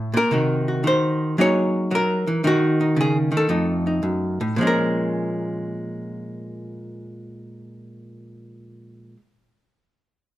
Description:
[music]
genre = solo jazz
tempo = 113 BPM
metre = 4/4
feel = swing 69% on 8ths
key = Bb minor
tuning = A4 = 440 Hz
[part]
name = archtop guitar, miked and amplified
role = solo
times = 0.0-9.2 s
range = F2 to Db5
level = -20 LUFS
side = equal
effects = none
[sound]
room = light reverb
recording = close, detailed microphones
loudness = -19 LUFS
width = side -14 dB against mid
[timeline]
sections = 0.0-4.6 A section; 4.6-8.8 B section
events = none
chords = 0.3 Cm7b5; 1.4 Gb13; 2.4 Ebm7; 3.5 F7; 4.6 Bbm7

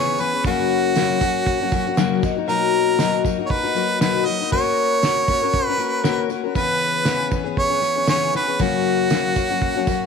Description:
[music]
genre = acoustic pop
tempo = 118 BPM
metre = 4/4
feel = swing 55% on 16ths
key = unclear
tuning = A4 = 441 Hz
[part]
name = bright harmonica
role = melody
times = 0.0-10.1 s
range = F#4 to D#5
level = -21 LUFS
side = right 3 dB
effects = tape echo
[part]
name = picked steel-string acoustic guitar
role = accompaniment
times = 0.0-10.1 s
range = F#2 to A#4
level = -21 LUFS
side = left 11 dB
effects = none
[part]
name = cloth-damped thuddy drum kit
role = drums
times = 0.2-10.0 s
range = kick drum, shaker, snare drum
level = -24 LUFS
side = right 2 dB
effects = none
[part]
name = tambourine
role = percussion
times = 0.2-10.0 s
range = none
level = -39 LUFS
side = right 20 dB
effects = none
[sound]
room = light reverb, studio ambience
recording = 1960s-style stereo with parts hard left and right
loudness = -17 LUFS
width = side -6 dB against mid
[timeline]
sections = 0.0-10.1 A section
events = none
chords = 0.4 F#; 2.2 Bmaj7; 4.5 F#/A#; 6.6 C#m7; 8.6 F#

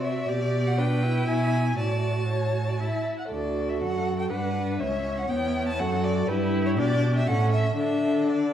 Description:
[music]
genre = quick classical-period movement for string quartet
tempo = 120 BPM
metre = 3/4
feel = straight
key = D major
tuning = A4 = 438 Hz
[part]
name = warm violin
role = melody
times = 0.0-8.5 s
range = B4 to A5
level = -31 LUFS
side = left 1 dB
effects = none
[part]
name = warm violin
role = second line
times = 0.0-8.5 s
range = G4 to F#5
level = -32 LUFS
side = equal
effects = none
[part]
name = rich viola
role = accompaniment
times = 0.0-8.5 s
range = B3 to G4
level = -30 LUFS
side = equal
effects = none
[part]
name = rich cello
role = bass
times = 0.0-8.5 s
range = C#2 to D3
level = -26 LUFS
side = equal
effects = none
[sound]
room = wet recital hall reverb, RT60 1.4 s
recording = small room ambience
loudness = -23 LUFS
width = side -10 dB against mid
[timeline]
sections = 0.0-8.5 A section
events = none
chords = 0.3 G/B; 1.3 E/B; 1.8 D/A; 2.8 A5; 3.3 D; 4.3 G; 4.8 C#m7b5; 5.8 F#m; 6.3 G; 7.3 A; 7.8 D5

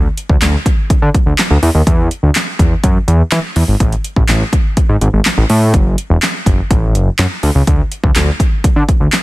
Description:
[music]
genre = dance-pop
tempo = 124 BPM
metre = 4/4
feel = straight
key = F# minor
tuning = A4 = 441 Hz
[part]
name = fat analog bass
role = bass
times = 0.0-9.1 s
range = E1 to E3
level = -12 LUFS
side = equal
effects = sidechain pumping
[part]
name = pop drum kit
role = drums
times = 0.2-9.2 s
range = handclaps, hi-hat, kick drum, snare drum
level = -13 LUFS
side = equal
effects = overdrive
[sound]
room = little or no reverb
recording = dense, heavily limited modern master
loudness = -10 LUFS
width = side -19 dB against mid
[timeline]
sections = 0.0-9.2 A section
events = none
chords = none

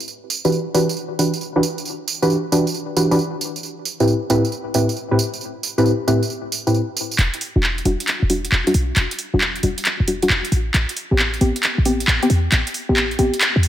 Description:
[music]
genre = UK garage, two-step garage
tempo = 135 BPM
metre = 4/4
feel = swing 67% on 16ths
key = E minor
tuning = A4 = 440 Hz
[part]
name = garage drum kit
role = drums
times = 0.0-13.7 s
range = handclaps, hi-hat, tambourine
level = -21 LUFS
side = right 1 dB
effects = overdrive, studio reverb
[part]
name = deep mellow chord stab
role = stabs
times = 0.4-13.3 s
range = A2 to B4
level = -20 LUFS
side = equal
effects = chorus, ping-pong delay
[part]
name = short 808-style bass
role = bass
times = 7.2-13.7 s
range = E1 to E2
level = -19 LUFS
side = equal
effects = none
[sound]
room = light reverb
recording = none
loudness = -17 LUFS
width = side -11 dB against mid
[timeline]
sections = 0.0-7.2 A section; 7.2-13.7 B section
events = build-up 7.2-13.7; drum fill 7.2-13.7; filter sweep on synth stab 7.2-13.7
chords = 0.1 Em9; 3.4 Am9; 7.2 Em9; 10.5 Am9

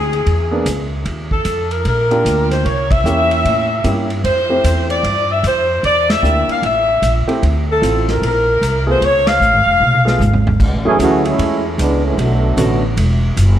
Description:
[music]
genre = jazz, big band swing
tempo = 151 BPM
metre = 4/4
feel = swing 64% on 8ths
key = unclear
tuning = A4 = 440 Hz
[part]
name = warm saxophone section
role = melody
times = 0.0-10.5 s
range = G#4 to E#5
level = -15 LUFS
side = left 1 dB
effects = none
[part]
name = upright bass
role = bass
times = 0.0-13.6 s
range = E1 to A2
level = -17 LUFS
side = equal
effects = none
[part]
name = vintage drum kit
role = drums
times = 0.1-13.5 s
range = crash cymbal, hi-hat, kick drum, ride cymbal, snare drum, toms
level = -23 LUFS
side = equal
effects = none
[part]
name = warm baby grand piano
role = accompaniment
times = 0.5-12.8 s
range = D3 to G#4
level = -21 LUFS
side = right 1 dB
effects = none
[part]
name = warm trombone section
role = second line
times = 10.9-12.8 s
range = B2 to G#4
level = -16 LUFS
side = right 2 dB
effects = none
[sound]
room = moderate concert hall reverb, RT60 2.4 s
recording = none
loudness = -13 LUFS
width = side -11 dB against mid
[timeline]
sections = 0.0-10.6 A section; 10.6-13.6 B section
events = band accent 2.9, 6.0, 9.2; drum fill 9.8-10.6; trombone section solo 10.6-13.6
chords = 0.3 E7#11; 1.1 Ebmaj9; 2.7 C7b9; 4.2 Fmaj9; 5.8 Em7b5; 6.6 A5; 7.4 Dm9; 9.0 C#7b13; 10.6 F#m9; 12.2 Bm7; 13.0 Esus2

